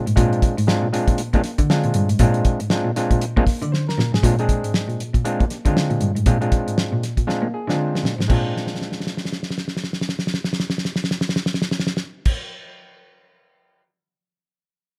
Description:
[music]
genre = funk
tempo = 118 BPM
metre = 4/4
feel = swing 60% on 16ths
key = Bb mixolydian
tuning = A4 = 442 Hz
[part]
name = overdriven clav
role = stabs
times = 0.0-12.3 s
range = Ab3 to D5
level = -27 LUFS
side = equal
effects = none
[part]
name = rich cello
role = bass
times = 0.0-12.3 s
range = G2 to Bb3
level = -24 LUFS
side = equal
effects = none
[part]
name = cloth-damped thuddy drum kit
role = drums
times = 0.1-13.8 s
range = crash cymbal, hi-hat, kick drum, snare drum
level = -23 LUFS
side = equal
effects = none
[sound]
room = small room ambience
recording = rough home demo mix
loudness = -21 LUFS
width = mono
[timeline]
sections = 0.0-4.2 A section; 4.2-8.3 B section; 8.3-12.4 C section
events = drum fill 3.7-4.2, 7.3-8.3, 8.6-12.2; clav fill 7.3-8.3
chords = 0.0 Bb9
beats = | 0.17 0.68 1.18 1.69 | 2.20 2.71 3.21 3.72 | 4.23 4.74 5.25 5.75 | 6.26 6.77 7.28 7.79 | 8.30 8.81 9.31 9.82 | 10.33 10.84 11.35 11.86

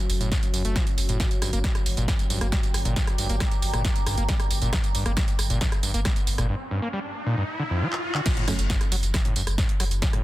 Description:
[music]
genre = driving peak-time techno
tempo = 136 BPM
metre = 4/4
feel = straight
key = unclear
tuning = A4 = 440 Hz
[part]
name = analog drone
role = drone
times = 0.0-6.5 s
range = F#3 to C#4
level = -38 LUFS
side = equal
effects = chorus, sidechain pumping
[part]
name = saturated sub bass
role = bass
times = 0.1-10.0 s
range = F#1 to G1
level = -27 LUFS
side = equal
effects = sidechain pumping, low-pass filter
[part]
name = techno drum kit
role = drums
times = 0.1-10.2 s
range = crash cymbal, handclaps, hi-hat, rim click, snare drum, tambourine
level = -29 LUFS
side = right 1 dB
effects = soft clipping on snare, sidechain pumping on hats, sidechain pumping on perc, sidechain pumping on cymbals
[part]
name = screaming distorted acid line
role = riff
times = 0.2-10.2 s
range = E#2 to Bb3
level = -30 LUFS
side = equal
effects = distortion, chorus, cassette tape, sidechain pumping, dub echo
[part]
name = electronic kick drum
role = drums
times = 0.3-10.1 s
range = none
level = -25 LUFS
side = equal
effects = none
[part]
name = deep dark ambient pad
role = texture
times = 2.3-10.2 s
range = F#4 to D6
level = -37 LUFS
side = right 2 dB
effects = chorus, built-in reverb, sidechain pumping
[part]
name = riser and impact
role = sound effects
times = 6.3-10.0 s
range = none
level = -33 LUFS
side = equal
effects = none
[part]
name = filtered dub chord stab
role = stabs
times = 8.5-8.7 s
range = F#3 to C#4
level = -35 LUFS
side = right 4 dB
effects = chorus, cassette tape, sidechain pumping, dub echo
[sound]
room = little or no reverb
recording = dense, heavily limited modern master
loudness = -22 LUFS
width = side -16 dB against mid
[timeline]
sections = 0.0-8.3 A section; 8.3-10.2 B section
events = riser 6.3-8.3; break 6.5-8.3; drum fill 7.9-8.3; drop 8.3-10.2; impact 8.3-10.0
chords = 0.0 F#m; 1.2 Gm; 8.3 F#m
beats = 0.32 0.76 | 1.20 1.64 2.08 2.52 | 2.96 3.40 3.85 4.29 | 4.73 5.17 5.61 6.05 | 6.49 6.93 7.38 7.82 | 8.26 8.70 9.14 9.58 | 10.02

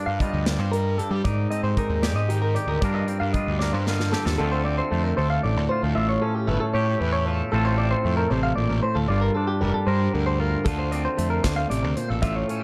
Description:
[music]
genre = math rock and midwest emo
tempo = 76 BPM (dotted quarters)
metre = 6/8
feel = straight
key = unclear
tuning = A4 = 439 Hz
[part]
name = twangy electric guitar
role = accompaniment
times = 0.0-12.6 s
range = G2 to Bb4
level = -28 LUFS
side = equal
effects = none
[part]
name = clean electric guitar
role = arpeggios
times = 0.0-12.6 s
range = G4 to F5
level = -30 LUFS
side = equal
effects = harmonic tremolo, digital delay
[part]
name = fuzz picked electric bass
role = bass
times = 0.1-12.4 s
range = F1 to G3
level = -28 LUFS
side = equal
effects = overdrive
[part]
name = modern studio drum kit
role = drums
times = 0.2-4.4, 10.7-12.6 s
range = hi-hat, kick drum, snare drum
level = -30 LUFS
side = equal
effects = none
[sound]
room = light reverb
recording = dark, warm production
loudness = -24 LUFS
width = mono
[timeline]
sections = 0.0-4.4 A section; 4.4-12.6 B section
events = drum fill 3.6-4.4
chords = 0.0 Gm7; 1.2 Abmaj9; 2.8 Gm7; 4.4 Dm7; 6.0 A7b13; 7.5 Dm7/A; 9.1 Gm9; 10.7 Dm7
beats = 0.46 | 1.25 2.03 | 2.82 3.60 | 4.39 5.17 | 5.95 6.74 | 7.52 8.30 | 9.09 9.87 | 10.65 11.44 | 12.22

